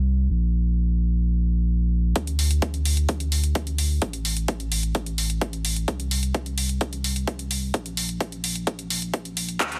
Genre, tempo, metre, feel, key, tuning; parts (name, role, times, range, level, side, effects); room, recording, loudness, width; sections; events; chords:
EDM, festival progressive house; 129 BPM; 4/4; straight; A4 = 440 Hz
saturated sub bass; bass; 0.0-9.8 s; A1 to D2; -26 LUFS; equal; sidechain pumping
big-room dance drum kit; drums; 2.2-9.8 s; handclaps, hi-hat; -30 LUFS; equal; overdrive, high-pass filter on hats, high-pass filter on snare
electronic kick drum; drums; 2.2-9.7 s; -30 LUFS; equal; overdrive, high-pass filter on kick
little or no reverb; dense, heavily limited modern master, high-pass filter; -25 LUFS; mono
0.0-2.2 A section; 2.2-9.8 B section
build-up 2.2-9.8; filter sweep 2.2-9.8; drum fill 9.6